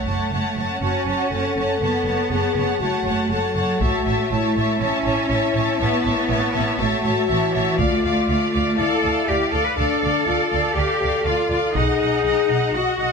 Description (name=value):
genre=cinematic, epic orchestral film score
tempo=121 BPM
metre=4/4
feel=straight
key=unclear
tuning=A4 = 440 Hz
part: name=warm studio violin section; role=melody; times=0.0-13.1 s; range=F5 to A5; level=-28 LUFS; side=left 2 dB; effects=none
part: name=warm symphonic violin section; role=second line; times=0.0-13.1 s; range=D5 to F#5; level=-28 LUFS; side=left 2 dB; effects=none
part: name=warm symphonic viola section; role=accompaniment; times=0.0-13.1 s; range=C#5 to D#5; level=-28 LUFS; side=right 2 dB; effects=none
part: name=rich symphonic cello section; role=bass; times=0.0-13.1 s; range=E3 to B4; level=-24 LUFS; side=right 2 dB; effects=none
part: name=rich symphonic double bass section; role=bass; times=0.1-13.1 s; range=F#1 to D2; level=-26 LUFS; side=right 3 dB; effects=none
part: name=mellow French horn section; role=sustained chords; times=0.8-13.1 s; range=D4 to A4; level=-24 LUFS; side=left 6 dB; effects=none
part: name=taiko ensemble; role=drums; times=3.8-4.8, 7.8-8.7, 11.8-12.7 s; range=none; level=-27 LUFS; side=left 1 dB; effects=none
room=moderate scoring stage reverb, RT60 1.6 s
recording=none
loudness=-18 LUFS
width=side -5 dB against mid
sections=0.0-13.1 A section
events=none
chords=0.0 F#m; 3.8 A; 7.8 Dm; 11.8 B